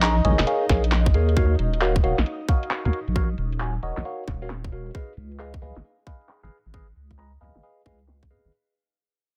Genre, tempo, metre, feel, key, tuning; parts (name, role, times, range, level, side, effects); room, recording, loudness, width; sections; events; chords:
UK garage, two-step garage; 134 BPM; 4/4; swing 65% on 16ths; A4 = 441 Hz
soft string machine; sustained chords; 0.0-8.5 s; D#4 to D#5; -36 LUFS; equal; ensemble chorus, sidechain pumping
tine electric piano; stabs; 0.0-8.5 s; Gb4 to Bb5; -30 LUFS; equal; overdrive, phaser, digital delay
deep soft wobble bass; bass; 0.0-8.5 s; Eb1 to F2; -26 LUFS; equal; chorus
garage drum kit; drums; 0.0-8.5 s; handclaps, hi-hat, snare drum; -30 LUFS; equal; overdrive, low-pass filter on hats, studio ambience, low-pass filter on snare
electronic kick drum; drums; 0.7-8.3 s; -25 LUFS; equal; overdrive, studio ambience
digital ambience; -23 LUFS; mono
0.0-8.5 A section
fade-out 0.0-8.5
0.0 Bbm7; 1.4 Ebm7; 4.9 Db7